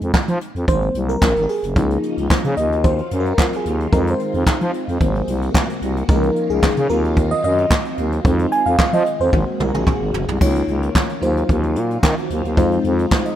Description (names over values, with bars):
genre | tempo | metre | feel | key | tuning
early-eighties boogie funk | 111 BPM | 4/4 | straight | Eb dorian | A4 = 440 Hz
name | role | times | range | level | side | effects
FM electric piano with soft pad layer | accompaniment | 0.0-13.4 s | F3 to Ab5 | -21 LUFS | left 1 dB | chorus, phaser
growling FM bass | bass | 0.0-13.1 s | Gb1 to F3 | -20 LUFS | equal | none
jazz brush drum kit | drums | 0.0-13.4 s | crash cymbal, handclaps, hi-hat, kick drum, snare drum, toms | -18 LUFS | equal | none
phased string machine | sustained chords | 1.9-13.4 s | C3 to Gb4 | -28 LUFS | equal | ensemble chorus, phaser
room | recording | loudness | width
light reverb, small room ambience | rough home demo mix | -16 LUFS | side -11 dB against mid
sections
0.0-10.4 A section; 10.4-13.4 B section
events
FM electric piano solo 0.0-10.4; drum fill 9.3-10.4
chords
0.0 Fm7; 0.7 Ab9; 1.8 Db69; 2.6 Ebm69; 3.9 Fm7; 5.0 Ab9; 6.1 Db69; 6.9 Ebm69; 8.2 Fm7; 9.3 Ab9; 10.4 Db69; 11.2 Ebm69; 12.6 Fm7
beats
0.14 0.68 1.22 | 1.76 2.30 2.85 3.38 | 3.93 4.47 5.01 5.55 | 6.09 6.63 7.17 7.71 | 8.25 8.79 9.33 9.87 | 10.41 10.95 11.49 12.03 | 12.57 13.12